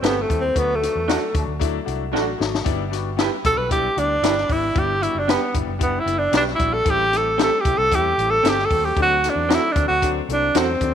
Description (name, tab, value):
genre	uptempo 1960s-style soul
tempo	114 BPM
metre	4/4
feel	straight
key	unclear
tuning	A4 = 440 Hz
part	breathy tenor saxophone	melody	0.0-10.9 s	A3 to B4	-19 LUFS	right 1 dB	none
part	clear grand piano	accompaniment	0.0-10.9 s	F#3 to A5	-27 LUFS	left 11 dB	none
part	electric guitar through a small old amp	stabs	0.0-10.7 s	C4 to B4	-26 LUFS	right 12 dB	none
part	vintage muted fingered electric bass	bass	0.0-10.9 s	F#1 to E2	-28 LUFS	right 1 dB	none
part	compact cocktail drum kit	drums	0.0-10.9 s	hi-hat, kick drum, snare drum	-23 LUFS	left 3 dB	none
room	moderate echo chamber reverb, RT60 1.4 s, small room ambience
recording	1960s-style stereo with parts hard left and right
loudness	-18 LUFS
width	side -8 dB against mid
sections	0.0-10.9 A section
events	tenor saxophone solo 0.0-10.9; grand piano fill 1.6-2.7; drum fill 2.1-2.7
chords	0.0 Am7; 0.6 D; 2.7 G6; 4.8 Em7; 6.9 Am7; 9.0 D7